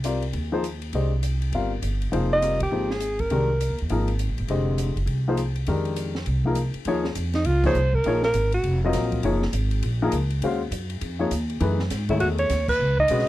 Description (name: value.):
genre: modal jazz.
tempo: 202 BPM.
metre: 4/4.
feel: swing 62% on 8ths.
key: Eb dorian from 6.9 s.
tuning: A4 = 439 Hz.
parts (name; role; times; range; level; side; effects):
dark baby grand piano; accompaniment; 0.0-13.3 s; D3 to F5; -26 LUFS; left 3 dB; none.
upright bass; bass; 0.0-13.3 s; F1 to Ab2; -25 LUFS; equal; none.
open jazz drum kit; drums; 0.0-13.3 s; crash cymbal, hi-hat, kick drum, ride cymbal, snare drum; -34 LUFS; equal; none.
mellow alto saxophone; melody; 2.3-3.8, 7.3-8.8, 12.1-13.3 s; Eb4 to Eb5; -23 LUFS; right 1 dB; none.
room: little or no reverb.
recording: dry, close 1970s-style studio recording.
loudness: -22 LUFS.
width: side -15 dB against mid.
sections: 0.0-6.9 A section; 6.9-13.3 B section.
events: band accent 2.6, 7.6, 12.6.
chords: 0.0 Cm11; 2.1 Fm11; 6.9 Ebm11; 11.6 Gbm11.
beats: 0.04 0.34 0.63 | 0.93 1.23 1.52 1.82 | 2.12 2.42 2.71 3.01 | 3.31 3.60 3.90 4.20 | 4.49 4.79 5.09 5.38 | 5.68 5.97 6.27 6.57 | 6.87 7.16 7.46 7.75 | 8.05 8.35 8.64 8.94 | 9.24 9.53 9.83 10.12 | 10.42 10.72 11.01 11.31 | 11.61 11.90 12.20 12.50 | 12.79 13.09.